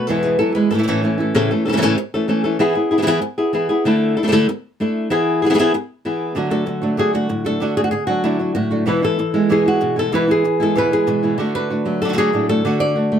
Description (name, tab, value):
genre	flamenco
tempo	191 BPM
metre	4/4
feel	straight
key	unclear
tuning	A4 = 440 Hz
part	flamenco guitar	melody	0.0-13.2 s	A2 to D5	-16 LUFS	equal	none
part	flamenco guitar	stabs	0.0-1.3, 6.3-13.2 s	E2 to F#4	-21 LUFS	right 2 dB	none
room	little or no reverb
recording	close, detailed microphones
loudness	-16 LUFS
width	side -8 dB against mid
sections	0.0-1.3 A section; 1.3-6.4 B section; 6.4-13.2 C section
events	none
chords	0.1 E; 0.7 A; 2.6 E; 3.8 Dsus2; 5.1 E; 6.4 D; 8.9 E; 11.4 D